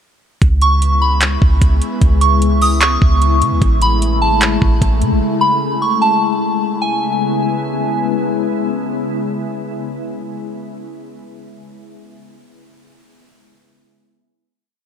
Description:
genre	hip hop, atmospheric cloud-rap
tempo	150 BPM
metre	4/4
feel	half-time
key	C# minor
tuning	A4 = 440 Hz
part	glassy FM pad	sustained chords	0.6-10.5 s	C#3 to E4	-20 LUFS	left 3 dB	ensemble chorus, built-in reverb, sidechain pumping
part	clean 808-style bass	bass	0.4-5.2 s	A1 to C#3	-14 LUFS	equal	none
part	smooth R&B drum kit	drums	0.4-5.1 s	handclaps, hi-hat, kick drum	-15 LUFS	equal	none
part	soft synth bell	melody	0.6-8.0 s	G#5 to D#6	-17 LUFS	right 1 dB	chorus, phaser, ping-pong delay
room	light reverb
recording	none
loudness	-13 LUFS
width	side -8 dB against mid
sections	0.4-6.8 verse; 6.8-10.0 final chord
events	none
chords	0.4 C#m7; 3.6 Amaj7; 6.8 C#m7

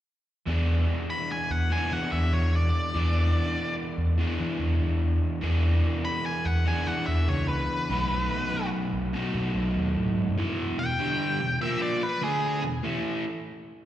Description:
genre	rock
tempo	97 BPM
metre	4/4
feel	swing 66% on 8ths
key	E mixolydian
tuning	A4 = 441 Hz
part	overdriven semi-hollow guitar	riff	0.5-13.2 s	E2 to G#4	-29 LUFS	equal	none
part	overdriven picked electric bass	bass	0.5-10.4 s	B1 to E3	-25 LUFS	equal	none
part	octave-fuzz lead guitar	melody	1.1-12.6 s	G#4 to B5	-30 LUFS	left 1 dB	distortion, slapback echo
room	light reverb, digital ambience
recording	live gig heard through the venue's PA, recital hall reverb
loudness	-24 LUFS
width	side -12 dB against mid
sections	0.5-10.4 A section; 10.4-13.9 B section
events	none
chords	0.5 E7; 7.9 B7; 10.4 E5

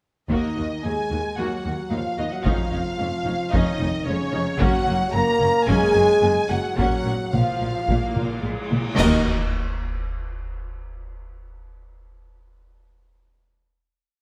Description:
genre	cinematic, epic orchestral film score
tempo	111 BPM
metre	4/4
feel	straight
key	Eb minor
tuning	A4 = 441 Hz
part	warm studio violin section	melody	0.3-9.3 s	Db5 to Bb5	-32 LUFS	equal	none
part	warm symphonic violin section	second line	0.3-9.3 s	Db5 to Bb5	-33 LUFS	equal	none
part	rich symphonic viola section	accompaniment	0.3-9.3 s	F3 to Bb4	-33 LUFS	equal	none
part	mellow French horn section	sustained chords	0.3-9.2 s	Db4 to Bb4	-28 LUFS	equal	none
part	warm trombone section	sustained chords	0.3-9.2 s	Db3 to Bb3	-31 LUFS	equal	none
part	clear symphonic double bass section	bass	0.3-9.3 s	F1 to Eb2	-32 LUFS	equal	none
part	rich symphonic cello section	bass	0.3-9.3 s	Eb2 to Bb2	-30 LUFS	equal	none
part	taiko ensemble	drums	0.3-9.1 s	none	-28 LUFS	equal	none
part	cymbal swell, clash cymbals and concert bass drum	percussion	4.6-10.0 s	none	-33 LUFS	equal	none
room	moderate scoring stage reverb, RT60 1.5 s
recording	none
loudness	-22 LUFS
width	mono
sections	0.3-9.0 theme; 9.0-11.1 final chord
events	band accent 9.0-9.5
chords	0.3 Ebm; 2.5 Dbadd9/F; 4.6 Gb; 6.8 Bbm; 9.0 Ebm

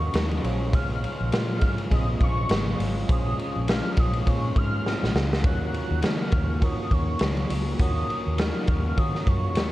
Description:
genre	indie pop, bedroom pop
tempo	102 BPM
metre	4/4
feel	swing 60% on 16ths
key	Bb minor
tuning	A4 = 440 Hz
part	warm velvety synth lead	melody	0.0-9.7 s	Db6 to Gb6	-33 LUFS	left 1 dB	wide subtle chorus, analog delay
part	electric guitar through a small old amp	accompaniment	0.0-9.7 s	Bb2 to Gb4	-34 LUFS	left 4 dB	lush chorus, warbly pitch drift
part	soft electric-piano-like synth keys	accompaniment	0.0-9.7 s	C4 to Eb5	-36 LUFS	right 5 dB	chorus, cassette tape
part	granular cloud pad	sustained chords	0.0-9.7 s	Db3 to F5	-39 LUFS	right 1 dB	none
part	vintage muted fingered electric bass	bass	0.0-9.7 s	Ab1 to Eb3	-27 LUFS	equal	none
part	raw garage drum kit	drums	0.1-9.7 s	hi-hat, kick drum, ride cymbal, snare drum	-24 LUFS	equal	none
room	small room reverb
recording	cassette tape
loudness	-22 LUFS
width	side -16 dB against mid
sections	0.0-9.7 A section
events	drum fill 4.9-5.4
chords	0.4 Bbm7; 5.4 Ebm7

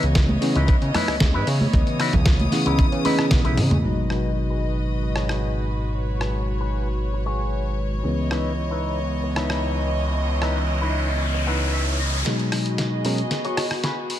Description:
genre	nu-disco, nu disco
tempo	114 BPM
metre	4/4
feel	straight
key	G# minor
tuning	A4 = 437 Hz
part	bell-like tine electric piano	accompaniment	0.0-13.2 s	B2 to D#5	-27 LUFS	equal	analog chorus, sidechain pumping, digital delay
part	warm chamber string section	sustained chords	0.0-14.2 s	E3 to D#6	-29 LUFS	left 1 dB	sidechain pumping, low-pass filter
part	electric guitar with an envelope filter	riff	0.0-14.1 s	D#4 to F#5	-30 LUFS	left 3 dB	wide subtle chorus, low-pass filter, digital delay
part	fat analog bass	bass	0.0-12.2 s	G#1 to C#3	-24 LUFS	equal	none
part	dusty soul sampler-style drum kit	drums	0.0-14.2 s	hi-hat, rim click, snare drum, toms	-26 LUFS	equal	studio reverb
part	electronic kick drum	drums	0.2-3.4 s	none	-19 LUFS	equal	studio reverb
part	congas	percussion	0.3-3.8 s	none	-28 LUFS	right 2 dB	none
part	riser	sound effects	9.0-12.3 s	none	-30 LUFS	equal	none
room	light reverb, digital ambience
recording	none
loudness	-20 LUFS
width	side -12 dB against mid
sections	0.0-3.8 A section; 3.8-12.3 B section; 12.3-14.2 C section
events	filter sweep on tine electric piano 0.0-3.8; drum fill 3.4-3.8, 12.3-14.2; riser 9.0-12.3; clean electric guitar fill 11.2-12.3; build-up 12.3-14.2; filter sweep on clean electric guitar 12.3-14.2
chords	0.0 C#m9; 3.8 G#m7; 8.1 C#m9; 12.3 G#m7

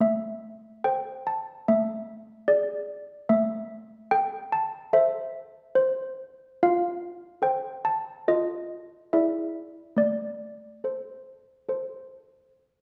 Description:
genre	classical, tune for handbells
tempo	72 BPM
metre	4/4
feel	uneven beats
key	A minor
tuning	A4 = 440 Hz
part	malleted handbells	solo	0.0-12.8 s	A3 to A5	-27 LUFS	equal	none
room	wet recital hall reverb, RT60 1.4 s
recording	recorded in a church or concert hall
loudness	-27 LUFS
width	mono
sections	0.0-12.8 A section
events	none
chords	0.0 Am; 1.7 E7/A; 3.3 Am; 6.6 F; 8.3 F7; 9.1 E7; 10.0 Am

